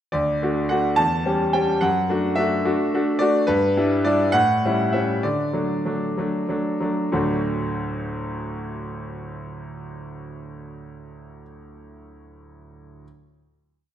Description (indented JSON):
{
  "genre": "classical-period piano sonatina",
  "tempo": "62-72 BPM (dotted quarters)",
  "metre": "6/8",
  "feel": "rubato",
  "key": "D major",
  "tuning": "A4 = 440 Hz",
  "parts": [
    { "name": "bright grand piano", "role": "solo", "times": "0.1-13.1 s", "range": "D2 to A5", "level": "-20 LUFS", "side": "equal", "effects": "none" }
  ],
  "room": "moderate recital hall reverb, RT60 1.5 s",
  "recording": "none",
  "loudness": "-19 LUFS",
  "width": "side -10 dB against mid",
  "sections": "0.1-7.1 theme; 7.1-10.8 final chord",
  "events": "slowing down 2.7-7.1",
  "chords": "0.1 D; 1.0 C#dim/E; 1.8 D/F#; 3.5 Em7/G; 4.3 A7; 5.2 D"
}